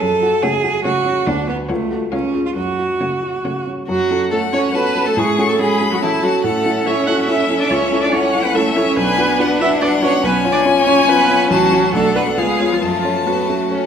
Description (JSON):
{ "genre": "quick classical-period movement for piano quintet", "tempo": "141 BPM", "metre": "3/4", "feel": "straight", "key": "F# minor", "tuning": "A4 = 441 Hz", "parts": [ { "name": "clear cello", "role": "second line", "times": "0.0-13.9 s", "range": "E3 to A4", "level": "-21 LUFS", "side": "right 4 dB", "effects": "none" }, { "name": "warm baby grand piano", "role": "accompaniment", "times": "0.0-13.9 s", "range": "A1 to D5", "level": "-19 LUFS", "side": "left 1 dB", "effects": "none" }, { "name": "clear violin", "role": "melody", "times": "0.4-13.9 s", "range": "E5 to C#6", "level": "-20 LUFS", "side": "left 6 dB", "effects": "none" }, { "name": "rich violin", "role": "second line", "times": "0.4-13.9 s", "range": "A3 to D5", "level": "-24 LUFS", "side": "left 3 dB", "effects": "none" }, { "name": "rich viola", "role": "accompaniment", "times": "0.4-13.9 s", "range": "G#3 to F#5", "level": "-20 LUFS", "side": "right 4 dB", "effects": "none" } ], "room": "moderate scoring stage reverb, RT60 1.8 s", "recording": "none", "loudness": "-14 LUFS", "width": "side -8 dB against mid", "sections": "0.0-3.9 A section; 3.9-13.9 B section", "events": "none", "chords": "0.0 F#m; 1.3 Bm/D; 1.7 F#m/C#; 2.1 C#; 2.6 F#m; 5.2 F#m/A; 6.4 A; 7.7 A/C#; 9.0 Bm; 10.2 C#7/B; 11.5 F#m/A; 11.9 Bm; 12.4 C#7; 12.8 F#m" }